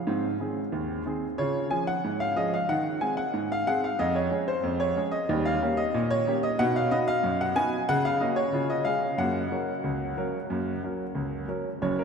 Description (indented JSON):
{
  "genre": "ragtime piano",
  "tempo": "92 BPM",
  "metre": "2/4",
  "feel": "straight",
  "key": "Db major, F# major from 6.6 s",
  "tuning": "A4 = 441 Hz",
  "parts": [
    { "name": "warm grand piano", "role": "solo", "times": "0.0-12.0 s", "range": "F#1 to Ab5", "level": "-25 LUFS", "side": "equal", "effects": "none" }
  ],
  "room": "wet cathedral reverb, RT60 5.6 s",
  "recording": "in a vast, echoing space",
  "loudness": "-25 LUFS",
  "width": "side -6 dB against mid",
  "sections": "0.0-11.8 A section",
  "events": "none",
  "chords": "0.1 Ab; 1.4 Db; 2.7 Ab/Eb; 4.0 Db/F; 5.3 Eb7; 6.6 B; 7.9 F#/C#; 8.5 C#; 9.2 F#"
}